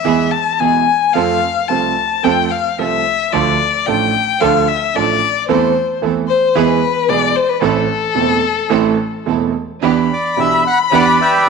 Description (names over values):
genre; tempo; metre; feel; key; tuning
tango; 110 BPM; 4/4; rubato; A minor; A4 = 439 Hz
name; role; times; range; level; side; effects
warm violin; second line; 0.0-11.5 s; A4 to B5; -15 LUFS; left 9 dB; none
clear concert grand piano; accompaniment; 0.0-11.2 s; E1 to A4; -17 LUFS; right 9 dB; none
clear symphonic string section; stabs; 0.0-11.5 s; E3 to A4; -24 LUFS; right 10 dB; none
bandoneon; melody; 10.1-11.5 s; G4 to F#5; -14 LUFS; right 2 dB; none
room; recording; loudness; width
moderate echo chamber reverb, RT60 1.6 s, small room ambience; 1960s-style stereo with parts hard left and right; -13 LUFS; side -5 dB against mid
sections
0.0-9.8 A section; 9.8-11.5 B section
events
violin solo 0.0-9.8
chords
0.0 E; 1.2 F; 3.3 Dm; 5.5 Am/E; 6.6 E; 7.6 Am; 9.8 Em7